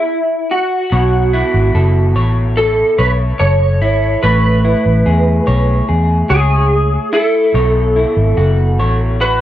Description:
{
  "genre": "indie pop, bedroom pop",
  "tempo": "72 BPM",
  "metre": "4/4",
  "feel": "straight",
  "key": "unclear",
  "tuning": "A4 = 439 Hz",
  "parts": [
    { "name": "electric guitar through a small old amp", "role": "melody", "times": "0.0-9.4 s", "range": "E4 to C#5", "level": "-15 LUFS", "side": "right 1 dB", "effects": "ensemble chorus" },
    { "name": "electric guitar through a small old amp", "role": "accompaniment", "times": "0.9-9.4 s", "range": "B2 to C#5", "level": "-18 LUFS", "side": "left 1 dB", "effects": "wide subtle chorus, vibrato effect" },
    { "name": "vintage muted fingered electric bass", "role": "bass", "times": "0.9-9.4 s", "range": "F#1 to E2", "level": "-13 LUFS", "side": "equal", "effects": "none" }
  ],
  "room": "moderate studio ambience, RT60 0.5 s",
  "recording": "worn, warbling old tape, cassette tape, warbly pitch drift",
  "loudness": "-11 LUFS",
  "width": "side -12 dB against mid",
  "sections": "0.9-9.4 A section",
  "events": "stop 0.0-0.9",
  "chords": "0.0 N.C.; 0.9 B9sus4; 4.2 Amaj9; 7.5 B9sus4"
}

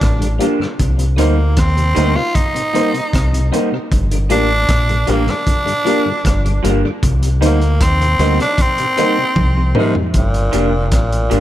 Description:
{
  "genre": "roots reggae",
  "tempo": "77 BPM",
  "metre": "4/4",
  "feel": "straight",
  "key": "G minor",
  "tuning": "A4 = 438 Hz",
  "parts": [
    { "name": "raspy tenor saxophone", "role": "melody", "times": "0.0-11.4 s", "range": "Bb2 to F4", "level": "-19 LUFS", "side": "equal", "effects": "dub echo" },
    { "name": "deep dub fingered electric bass", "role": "bass", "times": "0.0-11.4 s", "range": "F1 to Eb2", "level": "-15 LUFS", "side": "equal", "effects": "none" },
    { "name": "crunchy breakbeat drum kit", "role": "drums", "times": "0.0-11.4 s", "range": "hi-hat, kick drum, rim click, toms", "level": "-19 LUFS", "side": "equal", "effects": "none" },
    { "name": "tonewheel organ", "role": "accompaniment", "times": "0.2-10.0 s", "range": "G2 to C4", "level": "-26 LUFS", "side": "left 2 dB", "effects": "overdrive, chorus vibrato, slow rotary speaker, tape echo" },
    { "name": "electric guitar through a small old amp", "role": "accompaniment", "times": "0.4-11.4 s", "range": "F3 to Eb4", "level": "-22 LUFS", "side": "right 4 dB", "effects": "dub echo" },
    { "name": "dark concert grand piano", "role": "stabs", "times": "0.4-11.4 s", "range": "Eb4 to C5", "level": "-23 LUFS", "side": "left 4 dB", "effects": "none" }
  ],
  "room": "light reverb",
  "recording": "none",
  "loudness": "-13 LUFS",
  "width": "side -13 dB against mid",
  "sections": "0.0-10.1 A section; 10.1-11.4 B section",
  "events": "drum fill 9.4-10.1",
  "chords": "0.0 Gm7; 0.8 Cm7; 3.9 Gm7; 7.0 Cm7; 10.1 Gm7"
}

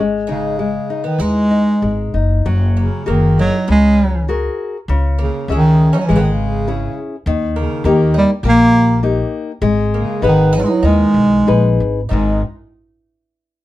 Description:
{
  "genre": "fado-style ballad",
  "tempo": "100 BPM",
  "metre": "4/4",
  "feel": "rubato",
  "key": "G# minor",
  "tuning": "A4 = 440 Hz",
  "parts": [
    { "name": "nylon-string guitar", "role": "accompaniment", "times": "0.0-12.4 s", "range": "G#2 to E5", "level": "-19 LUFS", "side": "left 5 dB", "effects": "none" },
    { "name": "upright bass", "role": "bass", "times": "0.0-12.4 s", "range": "F#1 to D#2", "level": "-17 LUFS", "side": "equal", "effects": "none" },
    { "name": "mellow bass clarinet", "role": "melody", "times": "0.3-12.4 s", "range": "C#3 to A#3", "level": "-14 LUFS", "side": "right 1 dB", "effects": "none" },
    { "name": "picked twelve-string acoustic guitar", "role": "second line", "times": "0.3-12.4 s", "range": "G#3 to G4", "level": "-25 LUFS", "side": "right 4 dB", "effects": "none" }
  ],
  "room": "light reverb",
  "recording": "dark, warm production",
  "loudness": "-13 LUFS",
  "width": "side -15 dB against mid",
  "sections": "0.0-2.5 A section; 2.5-12.1 B section; 12.1-13.6 C section",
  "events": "none",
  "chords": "0.0 G#5; 2.5 F#add9; 4.9 C#m; 7.3 D#; 9.6 G#m; 12.1 G#5"
}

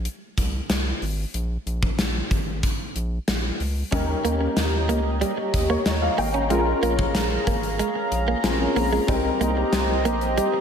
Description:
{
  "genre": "1980s-style pop",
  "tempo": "93 BPM",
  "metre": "4/4",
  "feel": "straight",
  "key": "Bb dorian",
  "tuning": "A4 = 441 Hz",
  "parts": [
    { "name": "round analog bass", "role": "bass", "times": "0.0-10.4 s", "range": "Ab1 to Eb2", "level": "-26 LUFS", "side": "equal", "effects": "none" },
    { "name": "gated 80s drum kit", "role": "drums", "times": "0.1-10.5 s", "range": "hi-hat, kick drum, snare drum", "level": "-26 LUFS", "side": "equal", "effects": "none" },
    { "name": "warm baby grand piano", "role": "accompaniment", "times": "3.9-10.6 s", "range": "C4 to Bb5", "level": "-26 LUFS", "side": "left 3 dB", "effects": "ensemble chorus" },
    { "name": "warm analog pad", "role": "sustained chords", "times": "3.9-10.6 s", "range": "G4 to Bb5", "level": "-26 LUFS", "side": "right 1 dB", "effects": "chorus" },
    { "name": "direct-recorded clean electric guitar", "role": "riff", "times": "3.9-10.6 s", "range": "G3 to Db4", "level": "-27 LUFS", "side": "right 4 dB", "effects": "analog chorus, ping-pong delay" }
  ],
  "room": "moderate lush hall reverb, RT60 2.2 s",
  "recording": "dreamy mix soaked in reverb",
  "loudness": "-21 LUFS",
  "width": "side -7 dB against mid",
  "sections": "0.0-10.6 A section",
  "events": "none",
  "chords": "0.0 Ab; 1.3 Bbm7; 3.9 Eb7; 6.5 Bbm7; 9.1 Cm7"
}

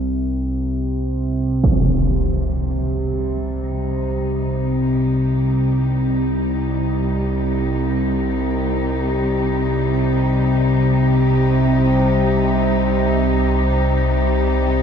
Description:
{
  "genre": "dark ambient drone",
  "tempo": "free time",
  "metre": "none",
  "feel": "none",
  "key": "C minor",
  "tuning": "A4 = 440 Hz",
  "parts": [
    { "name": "analog drone", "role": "drone", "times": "0.0-14.8 s", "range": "C2 to C3", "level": "-17 LUFS", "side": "equal", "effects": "chorus" },
    { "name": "warm studio cello section", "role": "sustained chords", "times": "1.6-14.8 s", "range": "C3 to G4", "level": "-25 LUFS", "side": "left 2 dB", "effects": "shimmer reverb" },
    { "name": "impact", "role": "percussion", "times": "1.6-1.9 s", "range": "none", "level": "-21 LUFS", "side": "right 1 dB", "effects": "low-pass filter on sfx" }
  ],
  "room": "moderate huge ambient reverb, RT60 7.8 s",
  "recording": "none",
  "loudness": "-16 LUFS",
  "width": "side -7 dB against mid",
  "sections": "0.0-1.6 A section; 1.6-14.8 B section",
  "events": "fade-in on cello section 1.6-14.8",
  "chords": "0.0 N.C.; 1.6 Cm"
}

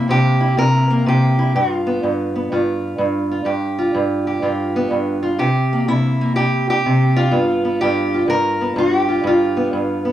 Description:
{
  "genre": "acoustic country blues, solo or duo",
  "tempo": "125 BPM",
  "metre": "4/4",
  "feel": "swing 66% on 8ths",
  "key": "G mixolydian",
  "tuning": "A4 = 439 Hz",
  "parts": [
    { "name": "fingerpicked steel-string acoustic guitar", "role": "solo", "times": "0.0-10.1 s", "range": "G2 to Bb4", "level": "-15 LUFS", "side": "equal", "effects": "none" }
  ],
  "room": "moderate large studio reverb, RT60 1.1 s",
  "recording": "band playing live in one room",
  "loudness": "-15 LUFS",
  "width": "side -12 dB against mid",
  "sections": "0.0-10.1 A section",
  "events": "none",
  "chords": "0.0 C7; 1.5 G7; 5.4 C7; 7.3 G7"
}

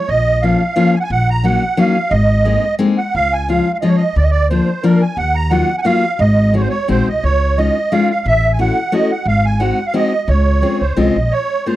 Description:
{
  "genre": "musette waltz",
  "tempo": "177 BPM",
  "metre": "3/4",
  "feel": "swing 54% on 8ths, rubato",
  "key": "Db major",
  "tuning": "A4 = 440 Hz",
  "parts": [
    { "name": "musette accordion", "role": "melody", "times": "0.0-11.8 s", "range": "Bb4 to Bb5", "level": "-17 LUFS", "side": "right 3 dB", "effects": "none" },
    { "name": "upright bass", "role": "bass", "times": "0.1-11.3 s", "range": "Ab1 to Eb2", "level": "-15 LUFS", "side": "equal", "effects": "none" },
    { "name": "fingerpicked steel-string acoustic guitar", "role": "accompaniment", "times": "0.4-11.8 s", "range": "F3 to Gb4", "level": "-16 LUFS", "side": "left 3 dB", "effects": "none" }
  ],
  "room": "studio reverb",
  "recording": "dry, close 1970s-style studio recording",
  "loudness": "-12 LUFS",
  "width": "side -14 dB against mid",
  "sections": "0.0-11.3 A section",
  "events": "none",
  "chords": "0.1 Bbm; 1.1 Ebm7/Bb; 2.1 Abadd9; 3.1 Db; 4.2 Bb/D; 5.2 Ebmadd9; 6.2 Ab7; 7.2 Dbadd9; 8.3 A6; 9.3 Ab7; 10.3 Dbmaj7"
}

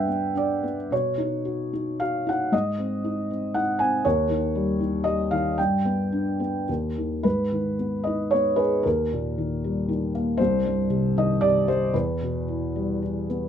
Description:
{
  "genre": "classical, lyrical solo piano",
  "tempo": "100-122 BPM",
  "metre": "3/4",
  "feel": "rubato",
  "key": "G# harmonic minor from 7.2 s",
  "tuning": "A4 = 440 Hz",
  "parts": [
    { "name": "felt-muted upright piano", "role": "solo", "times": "0.0-13.5 s", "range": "C2 to G#5", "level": "-22 LUFS", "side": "equal", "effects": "none" }
  ],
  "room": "moderate studio reverb, RT60 0.5 s",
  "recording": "faint mains hum",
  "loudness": "-22 LUFS",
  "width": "side -9 dB against mid",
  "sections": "0.0-7.2 A section; 7.2-13.5 B section",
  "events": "none",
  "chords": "0.0 G; 0.9 Badd9; 2.5 G#; 4.0 D#; 5.6 G; 6.7 N.C.; 7.2 G#m; 8.8 D#; 10.4 Cm; 11.9 Em"
}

